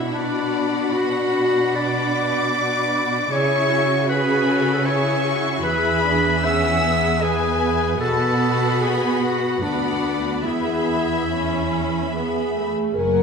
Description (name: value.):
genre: cinematic, emotional film score for orchestra.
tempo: 71-78 BPM.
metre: 3/4.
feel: rubato.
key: unclear.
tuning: A4 = 440 Hz.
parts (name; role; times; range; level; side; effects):
clear symphonic violin section; melody; 0.0-13.2 s; D5 to E6; -27 LUFS; left 4 dB; none.
rich symphonic violin section; second line; 0.0-13.2 s; C#5 to B5; -28 LUFS; left 2 dB; none.
warm clarinet; second line; 0.0-12.1 s; D4 to E5; -22 LUFS; left 3 dB; none.
rich symphonic viola section; accompaniment; 0.0-13.2 s; A3 to B4; -25 LUFS; right 2 dB; none.
rich symphonic cello section; bass; 0.0-13.2 s; D2 to C#3; -25 LUFS; right 3 dB; none.
warm French horn section; sustained chords; 12.1-13.2 s; G#4 to A#4; -21 LUFS; left 2 dB; none.
rich symphonic double bass section; bass; 13.0-13.2 s; F#1; -23 LUFS; right 6 dB; none.
room: wet scoring stage reverb, RT60 1.6 s.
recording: minimal, uncompressed stereo recording.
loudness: -18 LUFS.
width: side -5 dB against mid.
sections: 0.0-13.0 A section.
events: none.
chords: 0.0 Bm; 3.3 C#m; 5.6 E; 8.0 Bm; 10.5 E.